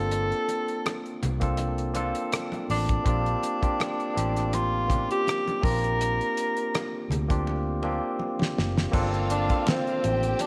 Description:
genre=lush 1970s-style soul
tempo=82 BPM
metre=4/4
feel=swing 54% on 16ths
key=Bb major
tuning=A4 = 440 Hz
part: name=warm tenor saxophone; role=melody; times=0.0-10.5 s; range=C4 to Bb4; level=-30 LUFS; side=equal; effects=none
part: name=barky tine electric piano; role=accompaniment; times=0.0-10.5 s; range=Bb3 to A4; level=-33 LUFS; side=equal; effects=none
part: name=vintage muted fingered electric bass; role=bass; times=0.0-10.3 s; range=Gb1 to D2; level=-31 LUFS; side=equal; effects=none
part: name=damped 70s drum kit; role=drums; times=0.1-10.5 s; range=crash cymbal, hi-hat, kick drum, rim click, snare drum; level=-31 LUFS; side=equal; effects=none
part: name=congas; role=percussion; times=0.5-10.5 s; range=none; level=-42 LUFS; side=equal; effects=none
part: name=warm studio string section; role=second line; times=8.9-10.5 s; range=F4 to G5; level=-37 LUFS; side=equal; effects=none
room=moderate echo chamber reverb, RT60 2.3 s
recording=none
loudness=-27 LUFS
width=mono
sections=0.0-8.9 A section; 8.9-10.5 B section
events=drum fill 7.5-8.9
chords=0.0 Gm11 (rootless); 3.1 Bb69; 5.6 Bb6; 8.9 Gm11

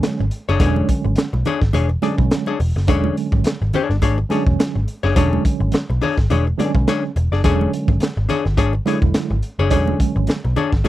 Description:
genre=funk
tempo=105 BPM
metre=4/4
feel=swing 56% on 16ths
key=E mixolydian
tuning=A4 = 440 Hz
part: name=archtop guitar, miked and amplified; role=accompaniment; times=0.0-10.9 s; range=D4 to D5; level=-21 LUFS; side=left 7 dB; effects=none
part: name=tine electric piano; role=stabs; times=0.0-10.4 s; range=D3 to E4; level=-22 LUFS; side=right 5 dB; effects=overdrive, fast stereo tremolo
part: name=vintage muted picked electric bass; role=bass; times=0.0-10.8 s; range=E1 to B1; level=-19 LUFS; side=equal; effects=none
part: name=crunchy breakbeat drum kit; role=drums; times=0.0-10.9 s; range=hi-hat, kick drum, snare drum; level=-20 LUFS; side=equal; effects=none
part: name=congas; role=percussion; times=0.0-10.9 s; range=none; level=-28 LUFS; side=right 4 dB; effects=none
room=little or no reverb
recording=dry, close 1970s-style studio recording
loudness=-16 LUFS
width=side -15 dB against mid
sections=0.0-10.9 A section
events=none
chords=0.0 E13

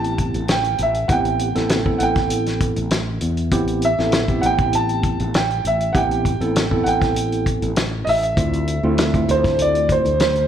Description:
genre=straight-eighth soul blues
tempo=99 BPM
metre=4/4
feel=straight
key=A minor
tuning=A4 = 443 Hz
part: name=warm upright piano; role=second line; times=0.0-10.5 s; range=C5 to A5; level=-21 LUFS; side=right 2 dB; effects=slapback echo
part: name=tine electric piano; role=accompaniment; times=0.0-10.1 s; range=A3 to A4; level=-23 LUFS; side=right 2 dB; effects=medium tremolo, slapback echo
part: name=fretless electric bass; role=bass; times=0.0-10.5 s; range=A1 to E2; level=-23 LUFS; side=left 1 dB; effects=lush chorus
part: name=warm soul drum kit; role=drums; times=0.0-10.5 s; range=hi-hat, kick drum, snare drum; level=-22 LUFS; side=left 1 dB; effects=none
room=light reverb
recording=live gig heard through the venue's PA, club ambience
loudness=-17 LUFS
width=side -9 dB against mid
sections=0.0-10.5 A section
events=upright piano solo 0.0-10.5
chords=0.0 Am9; 8.4 Dm9

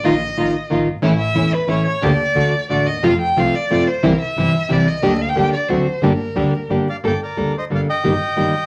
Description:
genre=tango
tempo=181 BPM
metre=3/4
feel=rubato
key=G minor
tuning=A4 = 435 Hz
part: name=rich violin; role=second line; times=0.0-6.7 s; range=Bb4 to G5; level=-23 LUFS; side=equal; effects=none
part: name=nylon-string guitar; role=accompaniment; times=0.0-8.5 s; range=C3 to A4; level=-20 LUFS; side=equal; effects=none
part: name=warm double bass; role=bass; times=0.0-8.5 s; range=E1 to F2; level=-28 LUFS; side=equal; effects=none
part: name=rich studio string section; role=stabs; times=0.1-6.8 s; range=F#3 to G4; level=-29 LUFS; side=equal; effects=none
part: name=bandoneon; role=melody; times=6.9-8.7 s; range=Bb4 to G5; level=-24 LUFS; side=equal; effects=none
room=wet studio reverb, RT60 0.5 s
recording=vinyl crackle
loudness=-18 LUFS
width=mono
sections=0.0-7.0 A section; 7.0-8.7 B section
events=violin solo 0.0-7.0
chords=0.0 Ebsus2/Bb; 1.0 A; 2.0 Gm/D; 2.4 D; 3.0 F; 4.0 C; 5.0 Gm/D; 5.7 D7; 6.0 Gm; 7.0 Gmadd9; 8.0 Eb/G

